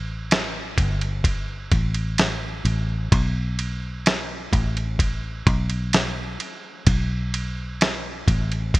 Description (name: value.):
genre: pop ballad.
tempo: 64 BPM.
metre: 4/4.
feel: straight.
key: unclear.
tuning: A4 = 439 Hz.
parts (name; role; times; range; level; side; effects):
fingered electric bass; bass; 0.0-8.8 s; G1 to B1; -24 LUFS; equal; none.
dusty soul sampler-style drum kit; drums; 0.3-8.8 s; kick drum, ride cymbal, snare drum; -23 LUFS; equal; none.
room: light reverb, digital ambience.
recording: bright 1980s-style digital production.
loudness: -21 LUFS.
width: side -20 dB against mid.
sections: 0.0-8.8 A section.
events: none.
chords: none.